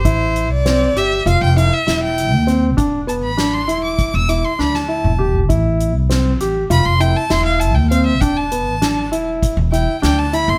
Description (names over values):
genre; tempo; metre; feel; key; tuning
progressive instrumental, band music in an uneven meter; 198 BPM (eighths); 9/8; straight; unclear; A4 = 435 Hz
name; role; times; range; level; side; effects
rich violin; melody; 0.0-10.6 s; C5 to E6; -22 LUFS; equal; none
dark baby grand piano; arpeggios; 0.0-10.5 s; B3 to G4; -22 LUFS; equal; none
upright bass; bass; 0.0-10.6 s; E1 to D#2; -20 LUFS; equal; none
soft-mallet drum kit; drums; 0.0-10.5 s; hi-hat, kick drum, snare drum, toms; -26 LUFS; equal; none
room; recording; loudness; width
moderate studio reverb, RT60 0.8 s; none; -16 LUFS; mono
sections
0.0-10.6 A section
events
violin solo 0.0-10.6; drum fill 4.6-5.5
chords
0.0 Am7; 1.3 F5; 2.8 E7sus4; 5.5 Am7; 6.7 F5; 8.2 E7sus4